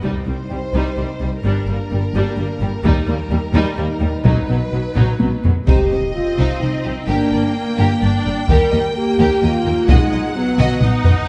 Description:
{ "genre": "cinematic, epic orchestral film score", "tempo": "128 BPM", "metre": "3/4", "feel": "straight", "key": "unclear", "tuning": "A4 = 440 Hz", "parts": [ { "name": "warm symphonic violin section", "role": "melody", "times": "0.0-11.2 s", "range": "Bb4 to G5", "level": "-31 LUFS", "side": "equal", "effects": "none" }, { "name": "rich symphonic violin section", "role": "second line", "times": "0.0-11.3 s", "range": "G3 to Eb5", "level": "-30 LUFS", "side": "equal", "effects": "none" }, { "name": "rich symphonic viola section", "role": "accompaniment", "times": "0.0-11.3 s", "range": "F#3 to D#4", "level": "-27 LUFS", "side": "equal", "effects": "none" }, { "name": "mellow French horn section", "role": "sustained chords", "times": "0.0-11.0 s", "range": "F#3 to Bb4", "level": "-24 LUFS", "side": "equal", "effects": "none" }, { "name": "rich studio cello section", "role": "bass", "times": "0.0-11.1 s", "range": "C2 to C3", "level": "-24 LUFS", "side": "equal", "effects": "none" }, { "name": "rich symphonic double bass section", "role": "bass", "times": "0.0-11.1 s", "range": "G1 to Eb2", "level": "-24 LUFS", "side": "equal", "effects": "none" }, { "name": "taiko ensemble", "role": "drums", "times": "0.0-11.3 s", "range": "none", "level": "-20 LUFS", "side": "equal", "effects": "none" }, { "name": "impact", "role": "sound effects", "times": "5.7-7.1 s", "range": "none", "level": "-28 LUFS", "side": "equal", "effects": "none" } ], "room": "moderate scoring stage reverb, RT60 2.0 s", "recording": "nothing above 10.8 kHz", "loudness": "-17 LUFS", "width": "mono", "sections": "0.0-5.7 A section; 5.7-11.3 B section", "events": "drum fill 5.0-5.7, 10.6-11.3; impact 5.7-7.1", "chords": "0.0 Cm; 1.4 Gm; 2.8 Eb; 4.2 B; 5.7 Cm; 7.1 Gm; 8.5 Eb; 9.9 B" }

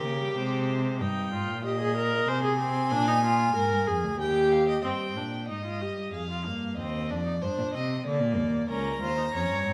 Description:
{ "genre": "classical, baroque-style fugue for string quartet", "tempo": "94 BPM", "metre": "3/4", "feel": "straight", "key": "unclear", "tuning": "A4 = 439 Hz", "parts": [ { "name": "warm violin", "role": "melody", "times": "0.0-4.8, 8.7-9.7 s", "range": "Bb4 to Bb5", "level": "-33 LUFS", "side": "equal", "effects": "none" }, { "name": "rich violin", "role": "second line", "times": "0.0-1.0, 4.8-9.7 s", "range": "G4 to G5", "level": "-35 LUFS", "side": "equal", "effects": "none" }, { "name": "warm viola", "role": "accompaniment", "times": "0.0-9.7 s", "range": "G3 to C5", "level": "-32 LUFS", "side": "equal", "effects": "none" }, { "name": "warm cello", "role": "bass", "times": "0.0-9.7 s", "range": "Db2 to D3", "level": "-33 LUFS", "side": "equal", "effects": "none" } ], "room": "wet recital hall reverb, RT60 1.6 s", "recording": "recorded in a church or concert hall", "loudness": "-28 LUFS", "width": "mono", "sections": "0.0-4.8 A section; 4.8-9.7 B section", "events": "none", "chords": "0.4 Ab/C; 1.0 Eb/G; 2.3 Ab/C; 2.9 Bb7; 4.2 Eb; 4.8 Eb/G; 6.1 Fmadd9; 6.8 Cm/Eb; 8.1 Bb; 8.7 Bbm/Db" }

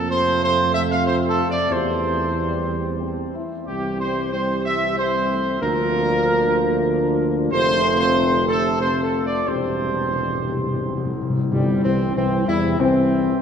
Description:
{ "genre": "classical, ceremonial fanfare", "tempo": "93 BPM", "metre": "3/4", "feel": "straight", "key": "C mixolydian", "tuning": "A4 = 442 Hz", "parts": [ { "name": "clear trumpet section", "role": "melody", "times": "0.0-13.4 s", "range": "G3 to F5", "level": "-22 LUFS", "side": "right 1 dB", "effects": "none" }, { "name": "mellow French horn section", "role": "sustained chords", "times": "0.0-13.4 s", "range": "G3 to G4", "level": "-25 LUFS", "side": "left 4 dB", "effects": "none" }, { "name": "warm trombone section", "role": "sustained chords", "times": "0.0-13.4 s", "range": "C3 to Bb3", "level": "-27 LUFS", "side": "right 2 dB", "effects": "none" }, { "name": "mellow tuba", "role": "bass", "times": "0.0-13.4 s", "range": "E1 to F2", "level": "-25 LUFS", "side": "right 2 dB", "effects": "none" }, { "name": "timpani", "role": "percussion", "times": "9.5-12.4 s", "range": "C3", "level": "-25 LUFS", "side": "left 2 dB", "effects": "none" } ], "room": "wet cathedral reverb, RT60 4.7 s", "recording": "none", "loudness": "-18 LUFS", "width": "side -7 dB against mid", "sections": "0.0-11.5 A section; 11.5-13.4 A section", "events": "timpani fill 9.5-11.5", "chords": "0.0 F; 1.7 C/E; 3.7 C; 5.6 Bb/D; 7.5 F; 9.5 C/E; 11.5 C/G" }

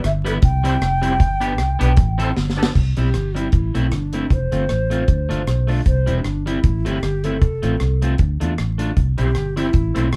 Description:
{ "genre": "ska", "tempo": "155 BPM", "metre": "4/4", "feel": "swing 56% on 8ths", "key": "C major", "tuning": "A4 = 440 Hz", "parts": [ { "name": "overdriven tonewheel organ", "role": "stabs", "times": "0.0-2.7, 9.2-10.1 s", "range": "B3 to C5", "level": "-32 LUFS", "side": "equal", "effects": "chorus vibrato, fast rotary speaker" }, { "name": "fingered electric bass", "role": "bass", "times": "0.0-10.2 s", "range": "E1 to E2", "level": "-22 LUFS", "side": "equal", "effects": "none" }, { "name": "deep reggae drum kit", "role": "drums", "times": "0.0-10.2 s", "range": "crash cymbal, hi-hat, kick drum, rim click, snare drum", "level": "-21 LUFS", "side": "equal", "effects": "none" }, { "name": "breathy bright round clay ocarina", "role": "melody", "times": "0.1-10.2 s", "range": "D4 to G5", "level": "-27 LUFS", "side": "equal", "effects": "none" }, { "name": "electric guitar at the edge of break-up", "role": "accompaniment", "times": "0.2-10.1 s", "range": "G3 to A4", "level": "-28 LUFS", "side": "equal", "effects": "none" } ], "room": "moderate small room ambience, RT60 0.5 s", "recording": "band playing live in one room, vinyl crackle", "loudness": "-19 LUFS", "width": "mono", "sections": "0.0-2.8 A section; 2.8-10.2 B section", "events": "drum fill 2.4-2.8", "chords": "0.4 C; 1.2 G; 2.0 Am; 2.4 Gadd9; 2.8 C; 3.5 Am; 4.3 F; 5.1 Dm; 5.9 C; 6.6 Am; 7.4 F; 8.2 Dm; 9.0 C" }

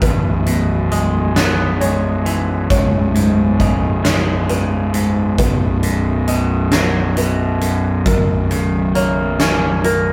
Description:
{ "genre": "post-rock", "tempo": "45 BPM (dotted quarters)", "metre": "6/8", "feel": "straight", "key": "B major", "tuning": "A4 = 440 Hz", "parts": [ { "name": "felt-muted upright piano", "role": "arpeggios", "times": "0.0-10.1 s", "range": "A#4 to D#5", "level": "-27 LUFS", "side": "equal", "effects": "none" }, { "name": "twangy electric guitar", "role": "arpeggios", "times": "0.0-10.1 s", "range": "B1 to C#4", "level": "-22 LUFS", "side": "equal", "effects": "spring reverb" }, { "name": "fuzz picked electric bass", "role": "bass", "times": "0.0-10.1 s", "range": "B0", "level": "-20 LUFS", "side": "equal", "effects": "overdrive" }, { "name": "huge arena drum kit", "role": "drums", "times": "0.0-10.1 s", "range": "hi-hat, kick drum, snare drum", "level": "-22 LUFS", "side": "equal", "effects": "none" } ], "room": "moderate stone room reverb, RT60 0.9 s", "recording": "band playing live in one room", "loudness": "-16 LUFS", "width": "mono", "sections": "0.0-10.1 A section", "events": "none", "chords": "0.0 E/B; 2.7 C#sus2/B; 5.4 B; 8.1 F#/B" }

